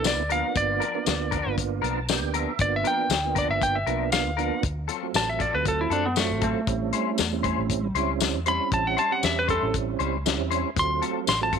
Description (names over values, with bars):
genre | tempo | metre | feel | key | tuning
straight-eighth soul blues | 118 BPM | 4/4 | swing 54% on 16ths | unclear | A4 = 443 Hz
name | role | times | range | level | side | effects
clean lap steel guitar | melody | 0.0-11.5 s | A3 to C6 | -25 LUFS | equal | none
tonewheel organ | accompaniment | 0.0-11.6 s | F#3 to A5 | -30 LUFS | right 15 dB | slow rotary speaker, overdrive, chorus vibrato
vintage muted fingered electric bass | bass | 0.0-11.6 s | G1 to F#2 | -31 LUFS | equal | none
warm soul drum kit | drums | 0.0-11.6 s | hi-hat, kick drum, snare drum, tambourine | -27 LUFS | left 7 dB | none
clean electric guitar | stabs | 0.3-11.6 s | F3 to B#4 | -31 LUFS | left 14 dB | ensemble chorus
room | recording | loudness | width
light reverb, small room ambience | 1960s-style stereo with parts hard left and right | -22 LUFS | side -6 dB against mid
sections
0.0-11.6 A section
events
electric slide guitar solo 0.0-11.6; tonewheel organ fill 1.6-2.6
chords
0.0 G7#9; 4.6 D7#9; 6.7 A7#9; 10.8 D7#9